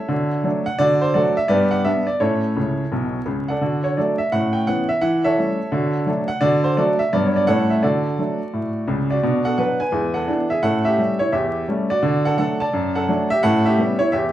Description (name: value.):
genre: jazz, stride piano.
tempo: 171 BPM.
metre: 4/4.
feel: swing 63% on 8ths.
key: D major.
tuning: A4 = 440 Hz.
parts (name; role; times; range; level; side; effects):
clear upright piano; solo; 0.0-14.3 s; B1 to A5; -17 LUFS; equal; none.
room: wet club reverb, RT60 0.9 s.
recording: heard from further back in the room, vinyl crackle.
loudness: -17 LUFS.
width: side -12 dB against mid.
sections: 0.0-9.2 A section; 9.2-14.3 B section.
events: upright piano fill 2.6-3.6.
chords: 0.1 D; 1.5 G; 2.2 A; 3.6 D; 4.3 Aadd9; 5.0 A7/E; 5.7 D; 7.1 Gmaj7; 7.5 A7; 7.8 D; 9.2 Bm; 9.9 E7; 10.6 A7; 12.0 D; 12.7 D/F#; 13.4 A9.